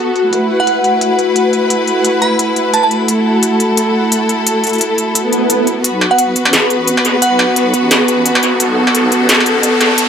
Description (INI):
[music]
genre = half-time drum and bass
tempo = 174 BPM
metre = 4/4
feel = swing 56% on 16ths, half-time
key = unclear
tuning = A4 = 440 Hz
[part]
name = clear symphonic string section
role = sustained chords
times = 0.0-10.1 s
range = A3 to B4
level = -14 LUFS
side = equal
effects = none
[part]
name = backwards swelling texture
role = texture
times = 0.0-5.9 s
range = F#4 to F#5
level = -18 LUFS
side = left 2 dB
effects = built-in reverb
[part]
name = industrial drum kit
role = drums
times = 0.2-10.1 s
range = hi-hat, snare drum, struck metal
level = -14 LUFS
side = equal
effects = overdrive, high-pass filter on hats, low-pass filter on hats, high-pass filter on perc, low-pass filter on perc, high-pass filter on snare, low-pass filter on snare, high-pass filter on room, low-pass filter on room, dub echo
[part]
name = glassy synth bell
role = melody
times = 0.6-2.9, 6.1-7.5 s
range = F#5 to B5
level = -19 LUFS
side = right 2 dB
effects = chorus, phaser, dub echo
[part]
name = swell and riser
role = sound effects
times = 5.2-10.1 s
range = none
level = -19 LUFS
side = right 1 dB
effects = none
[part]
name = deep soft wobble bass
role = bass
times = 5.8-10.1 s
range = A1 to E2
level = -22 LUFS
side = equal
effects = chorus, high-pass filter
[sound]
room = moderate echo chamber reverb, RT60 1.3 s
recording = echo-heavy mix, high-pass filter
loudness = -10 LUFS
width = side -7 dB against mid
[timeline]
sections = 0.0-5.8 A section; 5.8-10.1 B section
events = swell 5.2-5.8; build-up 5.8-10.1; riser 5.8-10.1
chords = 0.3 A5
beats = | 0.33 0.67 1.01 1.36 | 1.70 2.05 2.39 2.74 | 3.08 3.43 3.77 4.12 | 4.46 4.81 5.15 5.50 | 5.84 6.19 6.53 6.88 | 7.22 7.57 7.91 8.26 | 8.60 8.95 9.29 9.63 | 9.98